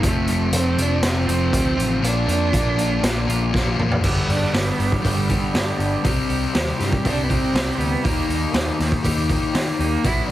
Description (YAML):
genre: quiet-loud alternative rock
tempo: 120 BPM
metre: 4/4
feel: straight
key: unclear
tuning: A4 = 440 Hz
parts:
  - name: rich cello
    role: melody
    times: 0.0-10.3 s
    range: D3 to E4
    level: -25 LUFS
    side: right 5 dB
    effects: none
  - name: twangy electric guitar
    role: arpeggios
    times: 0.0-10.3 s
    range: F2 to G4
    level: -29 LUFS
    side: right 5 dB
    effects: tape echo
  - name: crunchy overdriven guitar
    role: riff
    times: 0.0-10.3 s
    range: F2 to Eb4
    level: -24 LUFS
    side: left 6 dB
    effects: none
  - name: picked electric bass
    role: bass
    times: 0.0-10.3 s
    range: F1 to Eb3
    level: -24 LUFS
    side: equal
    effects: none
  - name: raw garage drum kit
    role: drums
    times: 0.0-10.2 s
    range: crash cymbal, hi-hat, kick drum, snare drum, toms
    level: -23 LUFS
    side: equal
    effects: none
room: light reverb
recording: heavily compressed radio sound, multiband compression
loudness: -18 LUFS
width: side -14 dB against mid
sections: 0.0-4.0 A section; 4.0-10.3 B section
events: half time 0.0-4.0; drum fill 3.5-4.0; cello solo 4.0-10.3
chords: 0.0 F; 2.0 Bb; 4.0 G; 6.0 Cm; 8.1 Eb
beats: | 0.04 0.54 1.04 1.54 | 2.04 2.54 3.04 3.54 | 4.04 4.54 5.05 5.55 | 6.05 6.55 7.05 7.55 | 8.05 8.55 9.05 9.55 | 10.05